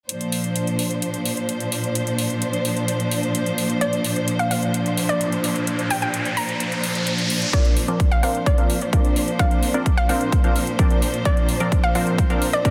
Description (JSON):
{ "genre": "EDM, festival progressive house", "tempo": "129 BPM", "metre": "4/4", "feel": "straight", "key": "Bb major", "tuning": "A4 = 440 Hz", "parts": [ { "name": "warm studio string section", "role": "sustained chords", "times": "0.1-12.7 s", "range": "Bb2 to C5", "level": "-26 LUFS", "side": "equal", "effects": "sidechain pumping" }, { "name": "electronic hi-hat", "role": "drums", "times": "0.1-12.7 s", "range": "none", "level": "-30 LUFS", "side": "equal", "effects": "high-pass filter on hats" }, { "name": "hollow square pluck", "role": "melody", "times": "3.8-12.7 s", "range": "D5 to Bb5", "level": "-28 LUFS", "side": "equal", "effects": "chorus, cassette tape, delay" }, { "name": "riser", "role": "sound effects", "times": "4.9-7.5 s", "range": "none", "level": "-29 LUFS", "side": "equal", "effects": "none" }, { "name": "supersaw stab", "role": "riff", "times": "7.5-12.7 s", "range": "F3 to F5", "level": "-27 LUFS", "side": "equal", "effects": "sidechain pumping, low-pass filter" }, { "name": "electronic kick drum", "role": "drums", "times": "7.5-12.7 s", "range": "none", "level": "-21 LUFS", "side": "equal", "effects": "none" } ], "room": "light reverb", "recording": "dense, heavily limited modern master", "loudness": "-21 LUFS", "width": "mono", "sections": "0.1-7.5 A section; 7.5-12.7 B section", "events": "riser 4.9-7.5; build-up 7.5-12.7; filter sweep on supersaw synth 7.5-12.7", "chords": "0.1 Bbadd9" }